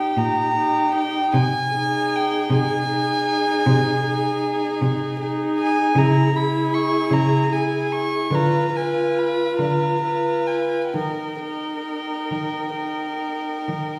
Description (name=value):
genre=classical, slow romantic movement for string quartet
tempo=42-53 BPM (dotted quarters)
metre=12/8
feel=rubato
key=Ab major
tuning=A4 = 435 Hz
part: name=warm violin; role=melody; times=0.0-14.0 s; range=G5 to C#6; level=-27 LUFS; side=equal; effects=none
part: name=rich violin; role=second line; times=0.0-14.0 s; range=G4 to B4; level=-28 LUFS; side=equal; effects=none
part: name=dark viola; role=accompaniment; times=0.0-14.0 s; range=D#4 to F4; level=-28 LUFS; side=equal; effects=none
part: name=rich cello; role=bass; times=0.2-14.0 s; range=Bb2 to D#3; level=-26 LUFS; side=equal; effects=none
room=wet recital hall reverb, RT60 1.2 s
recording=heard from further back in the room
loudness=-21 LUFS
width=mono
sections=0.0-14.0 A section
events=none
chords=0.0 Eb/Bb; 1.3 Ab/C; 6.0 C#m; 8.3 Ddim7; 11.0 D#